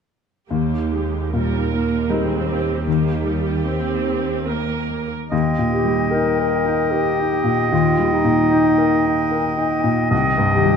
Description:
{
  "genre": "cinematic",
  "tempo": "75 BPM",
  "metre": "3/4",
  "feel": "uneven beats, rubato",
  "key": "Eb major",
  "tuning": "A4 = 442 Hz",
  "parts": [
    { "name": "bright grand piano", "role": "accompaniment", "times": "0.5-10.8 s", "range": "C2 to Bb4", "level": "-21 LUFS", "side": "left 1 dB", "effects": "none" },
    { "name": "rich studio viola section", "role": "accompaniment", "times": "0.5-5.1 s", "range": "G3 to Bb4", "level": "-24 LUFS", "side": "right 5 dB", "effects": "none" },
    { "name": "concert harp", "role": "arpeggios", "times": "0.5-10.8 s", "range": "C3 to G5", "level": "-24 LUFS", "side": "left 6 dB", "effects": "none" },
    { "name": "bright studio cello section", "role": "bass", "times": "0.5-5.1 s", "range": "Eb2", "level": "-26 LUFS", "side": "right 4 dB", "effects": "none" },
    { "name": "clear oboe", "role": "second line", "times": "5.3-10.8 s", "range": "Eb5", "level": "-23 LUFS", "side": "right 2 dB", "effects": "none" },
    { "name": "mellow hollow concert flute", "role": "second line", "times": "5.3-10.8 s", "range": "G5", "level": "-25 LUFS", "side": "left 1 dB", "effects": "none" },
    { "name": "mellow clarinet", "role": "second line", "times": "5.7-10.8 s", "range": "Eb4 to Bb4", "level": "-20 LUFS", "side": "left 1 dB", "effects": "none" }
  ],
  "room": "moderate scoring stage reverb, RT60 1.8 s",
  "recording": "none",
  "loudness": "-17 LUFS",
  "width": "side -6 dB against mid",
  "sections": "0.5-5.3 A section; 5.3-10.8 B section",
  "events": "none",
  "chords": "0.5 Eb; 10.1 Cm"
}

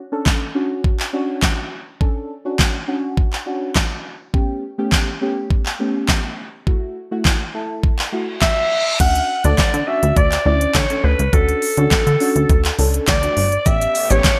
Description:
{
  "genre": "dance-pop",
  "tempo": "103 BPM",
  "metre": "4/4",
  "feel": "straight",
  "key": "D major",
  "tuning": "A4 = 440 Hz",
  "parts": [
    { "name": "deep mellow chord stab", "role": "accompaniment", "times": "0.1-14.4 s", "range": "A3 to A4", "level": "-26 LUFS", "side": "equal", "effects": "chorus, phaser, sidechain pumping" },
    { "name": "pop drum kit", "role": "drums", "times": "0.3-14.4 s", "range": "crash cymbal, handclaps, hi-hat, kick drum, shaker, snare drum", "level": "-20 LUFS", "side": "equal", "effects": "gated reverb" },
    { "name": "reverse cymbal", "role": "sound effects", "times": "8.1-9.0 s", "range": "none", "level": "-27 LUFS", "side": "equal", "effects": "none" },
    { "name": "growling clarinet", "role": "melody", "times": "8.4-14.4 s", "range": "A4 to F#5", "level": "-21 LUFS", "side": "equal", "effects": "digital delay" },
    { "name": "plucky analog bass", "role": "bass", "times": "9.0-14.3 s", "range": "G1 to D3", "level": "-20 LUFS", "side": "equal", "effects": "sidechain pumping" },
    { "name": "supersaw pad", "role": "sustained chords", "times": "13.7-14.4 s", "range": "C#3 to G4", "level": "-32 LUFS", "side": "equal", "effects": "ensemble chorus, sidechain pumping" }
  ],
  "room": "light reverb",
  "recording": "bright 1980s-style digital production",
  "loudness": "-18 LUFS",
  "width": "mono",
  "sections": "0.0-9.0 A section; 9.0-14.4 B section",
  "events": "reverse cymbal 8.2-9.0",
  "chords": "0.0 Dmaj7; 4.3 A9; 6.7 F#m7; 9.0 Dmaj7; 13.7 A9"
}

